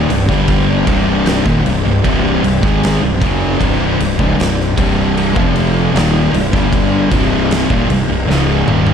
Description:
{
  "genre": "stoner and doom metal",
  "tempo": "77 BPM",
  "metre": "4/4",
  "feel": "straight",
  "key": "C minor",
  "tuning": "A4 = 435 Hz",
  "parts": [
    { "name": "swarming drone", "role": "sustained chords", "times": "0.0-8.9 s", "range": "C4 to G5", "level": "-27 LUFS", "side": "right 2 dB", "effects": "none" },
    { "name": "distorted electric guitar", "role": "riff", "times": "0.0-8.9 s", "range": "C2 to Ab3", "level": "-20 LUFS", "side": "right 1 dB", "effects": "overdrive" },
    { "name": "thick fuzz guitar", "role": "riff", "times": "0.0-8.9 s", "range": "C2 to Ab3", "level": "-17 LUFS", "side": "left 8 dB", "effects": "distortion" },
    { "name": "thick fuzz guitar", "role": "riff", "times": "0.0-8.9 s", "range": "C2 to Ab3", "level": "-19 LUFS", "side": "right 10 dB", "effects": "distortion" },
    { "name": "fuzz fingered electric bass", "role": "bass", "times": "0.0-8.9 s", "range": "C1 to Ab1", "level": "-19 LUFS", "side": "equal", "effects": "overdrive, tube saturation" },
    { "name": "oversized low-tuned drum kit", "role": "drums", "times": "0.1-8.9 s", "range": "kick drum, ride cymbal, snare drum, toms", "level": "-18 LUFS", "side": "equal", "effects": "none" }
  ],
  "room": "little or no reverb",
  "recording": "dark, warm production",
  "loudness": "-11 LUFS",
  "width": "side -7 dB against mid",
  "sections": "0.0-8.9 A section",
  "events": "drum fill 8.3-8.9",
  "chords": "0.0 Cm",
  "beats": "| 0.49 1.27 2.05 2.83 | 3.61 4.39 5.17 5.95 | 6.72 7.50 8.28"
}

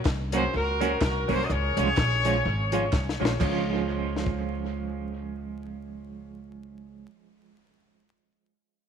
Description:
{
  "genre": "ska",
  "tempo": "125 BPM",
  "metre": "4/4",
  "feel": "swing 57% on 8ths",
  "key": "Db major",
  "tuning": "A4 = 444 Hz",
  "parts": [
    { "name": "upright bass", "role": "bass", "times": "0.0-7.0 s", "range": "Ab1 to Db2", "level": "-31 LUFS", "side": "equal", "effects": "none" },
    { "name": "compact cocktail drum kit", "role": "drums", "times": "0.1-4.4 s", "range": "crash cymbal, hi-hat, kick drum, snare drum", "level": "-30 LUFS", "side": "left 2 dB", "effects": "tape echo" },
    { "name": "group handclap", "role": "percussion", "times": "0.1-3.7 s", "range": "none", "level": "-44 LUFS", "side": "right 9 dB", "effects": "none" },
    { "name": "warm horn section", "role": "melody", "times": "0.3-2.9 s", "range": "Gb4 to Eb5", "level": "-28 LUFS", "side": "left 1 dB", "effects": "tape echo" },
    { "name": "clean electric guitar", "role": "accompaniment", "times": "0.3-7.1 s", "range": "F3 to Gb4", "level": "-31 LUFS", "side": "right 8 dB", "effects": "tremolo, tape echo" },
    { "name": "bright upright piano", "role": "stabs", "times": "0.3-7.0 s", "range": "Db4 to Db5", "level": "-36 LUFS", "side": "left 10 dB", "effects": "none" }
  ],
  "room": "moderate echo chamber reverb, RT60 1.6 s, small room reverb",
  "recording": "1960s-style stereo with parts hard left and right, vinyl crackle",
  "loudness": "-24 LUFS",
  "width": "side -7 dB against mid",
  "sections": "0.0-3.4 A section; 3.4-7.2 B section",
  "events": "drum fill 2.9-3.4",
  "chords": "0.0 Gb; 1.5 Db",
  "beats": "0.05 0.53 1.01 | 1.49 1.97 2.45 2.93 | 3.41 3.89 4.37 4.85 | 5.33 5.81 6.29 6.77"
}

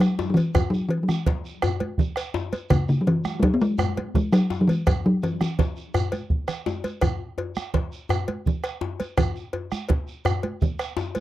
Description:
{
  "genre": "west african traditional, West African drum ensemble",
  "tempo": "111 BPM (dotted quarters)",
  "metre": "12/8",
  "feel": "straight",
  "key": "E major pentatonic",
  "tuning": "A4 = 439 Hz",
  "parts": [
    { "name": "talking drum", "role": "melody", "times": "0.0-6.1 s", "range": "C#3 to B3", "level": "-21 LUFS", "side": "left 1 dB", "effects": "tape echo" },
    { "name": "bombo", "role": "percussion", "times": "0.0-11.0 s", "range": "none", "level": "-25 LUFS", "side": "right 1 dB", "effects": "none" },
    { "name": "cowbell", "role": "percussion", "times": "0.0-11.2 s", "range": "none", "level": "-31 LUFS", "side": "left 1 dB", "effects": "none" },
    { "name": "shekere", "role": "percussion", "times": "0.0-11.2 s", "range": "none", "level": "-37 LUFS", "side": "right 2 dB", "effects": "none" },
    { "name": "djembe", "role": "percussion", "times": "0.2-11.1 s", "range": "none", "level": "-29 LUFS", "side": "left 4 dB", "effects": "none" },
    { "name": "congas", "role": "percussion", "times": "0.4-11.2 s", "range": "none", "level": "-28 LUFS", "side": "right 6 dB", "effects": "none" }
  ],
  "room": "little or no reverb",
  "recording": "dry, close 1970s-style studio recording",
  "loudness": "-22 LUFS",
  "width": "side -14 dB against mid",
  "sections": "0.0-11.2 A section",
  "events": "drum fill 6.3-7.0",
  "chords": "none",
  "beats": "0.00 | 0.54 1.08 1.63 2.17 | 2.71 3.25 3.79 4.33 | 4.87 5.41 5.95 6.48 | 7.02 7.56 8.10 8.64 | 9.18 9.71 10.25 10.79"
}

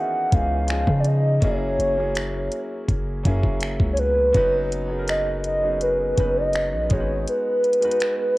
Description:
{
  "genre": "contemporary R&B",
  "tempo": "82 BPM",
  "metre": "4/4",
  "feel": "straight",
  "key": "unclear",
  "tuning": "A4 = 440 Hz",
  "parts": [
    { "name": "hollow clarinet-like synth lead", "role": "melody", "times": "0.0-8.4 s", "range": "B4 to F#5", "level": "-22 LUFS", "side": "equal", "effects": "chorus, cassette tape, analog delay" },
    { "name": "clear concert grand piano", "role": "accompaniment", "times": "0.0-8.4 s", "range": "D#3 to B4", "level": "-29 LUFS", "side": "equal", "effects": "cassette tape" },
    { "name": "long sustained 808-style bass", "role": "bass", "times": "0.3-7.3 s", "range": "F#1 to C#3", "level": "-25 LUFS", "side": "equal", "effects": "none" },
    { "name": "smooth R&B drum kit", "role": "drums", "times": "0.3-8.2 s", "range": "finger snaps, hi-hat, kick drum", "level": "-24 LUFS", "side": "equal", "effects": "cassette tape" }
  ],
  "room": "moderate spring reverb, RT60 2.3 s",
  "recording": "home recording on cassette",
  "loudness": "-19 LUFS",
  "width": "side -19 dB against mid",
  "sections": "0.0-8.4 A section",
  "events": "kick muted 7.3-8.4",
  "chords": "0.0 C#m7; 0.7 C#7; 1.4 F#7; 4.3 Bmaj7/F#; 6.9 G#m7",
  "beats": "0.69 | 1.42 2.15 2.88 3.62 | 4.35 5.08 5.81 6.54 | 7.28 8.01"
}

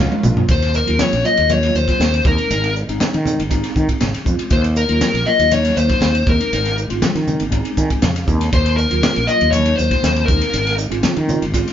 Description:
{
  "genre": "electric jazz fusion",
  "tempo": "120 BPM",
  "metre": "4/4",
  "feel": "straight",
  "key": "Eb dorian",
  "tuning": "A4 = 440 Hz",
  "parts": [
    { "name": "mellow tine electric piano", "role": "accompaniment", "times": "0.0-11.7 s", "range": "Gb3 to Ab5", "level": "-24 LUFS", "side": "right 2 dB", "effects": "overdrive, medium stereo tremolo" },
    { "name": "string machine, violas", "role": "sustained chords", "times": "0.0-0.5 s", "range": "Eb3 to F4", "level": "-30 LUFS", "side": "equal", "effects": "ensemble chorus" },
    { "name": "fretless electric bass", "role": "bass", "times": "0.0-11.6 s", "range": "Ab1 to Eb3", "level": "-19 LUFS", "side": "equal", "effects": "none" },
    { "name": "crisp fusion drum kit", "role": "drums", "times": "0.1-11.7 s", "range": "hi-hat, kick drum, ride cymbal, snare drum, toms", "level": "-20 LUFS", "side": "equal", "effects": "none" },
    { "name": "dark smooth lead guitar", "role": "melody", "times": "0.5-10.7 s", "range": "Bb4 to Eb5", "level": "-17 LUFS", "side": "left 4 dB", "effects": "overdrive" },
    { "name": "congas", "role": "percussion", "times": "0.5-11.6 s", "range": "none", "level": "-24 LUFS", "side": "left 2 dB", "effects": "none" }
  ],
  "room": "moderate studio reverb, RT60 0.8 s",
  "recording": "band playing live in one room, nothing above 7.5 kHz",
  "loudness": "-14 LUFS",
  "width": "side -10 dB against mid",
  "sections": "0.5-11.7 A section",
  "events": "drum fill 0.0-0.5; tine electric piano fill 7.5-8.5",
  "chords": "0.5 Ebm9; 2.3 Bbm11; 4.5 Ebm9; 6.3 Bbm11; 8.5 Ebm9; 10.3 Bbm11",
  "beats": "0.00 | 0.50 1.00 1.50 2.00 | 2.50 3.01 3.51 4.01 | 4.51 5.02 5.52 6.02 | 6.52 7.03 7.53 8.03 | 8.53 9.03 9.53 10.04 | 10.54 11.04 11.54"
}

